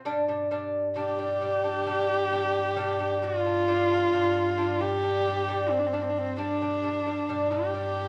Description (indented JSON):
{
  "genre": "mongolian traditional",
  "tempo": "66 BPM",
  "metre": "4/4",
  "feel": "straight",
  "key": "unclear",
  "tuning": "A4 = 440 Hz",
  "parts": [
    { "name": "lute", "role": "arpeggios", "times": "0.1-8.1 s", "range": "G3 to D4", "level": "-31 LUFS", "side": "equal", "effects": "none" },
    { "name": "rich cello", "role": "drone", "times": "0.1-8.1 s", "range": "G2", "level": "-40 LUFS", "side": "equal", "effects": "none" },
    { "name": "warm horsehead fiddle", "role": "melody", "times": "1.0-8.1 s", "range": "C4 to G4", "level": "-29 LUFS", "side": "equal", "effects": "none" }
  ],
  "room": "wet large studio reverb, RT60 0.9 s",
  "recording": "band playing live in one room",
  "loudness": "-27 LUFS",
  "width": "mono",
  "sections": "0.1-8.1 A section",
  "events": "none",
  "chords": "0.1 G5"
}